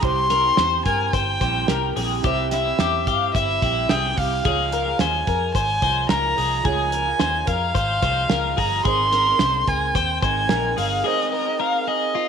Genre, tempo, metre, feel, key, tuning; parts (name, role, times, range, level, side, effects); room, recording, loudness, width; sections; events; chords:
jangly indie pop; 109 BPM; 4/4; straight; A4 = 441 Hz
dark violin; melody; 0.0-12.3 s; Eb5 to C6; -22 LUFS; right 1 dB
dark upright piano; accompaniment; 0.0-12.3 s; E4 to Db5; -34 LUFS; right 11 dB
electric guitar through a small old amp; accompaniment; 0.0-12.3 s; C3 to Bb4; -30 LUFS; right 12 dB
twelve-string electric guitar; arpeggios; 0.0-12.3 s; E4 to C5; -25 LUFS; left 12 dB; harmonic tremolo
vintage muted fingered electric bass; bass; 0.0-11.0 s; G1 to G2; -27 LUFS; left 1 dB
cloth-damped thuddy drum kit; drums; 0.0-10.9 s; hi-hat, kick drum, snare drum; -25 LUFS; right 3 dB
light reverb, studio reverb; 1960s-style stereo with parts hard left and right; -18 LUFS; side -7 dB against mid
0.0-12.3 A section
0.0 C; 4.5 Abadd9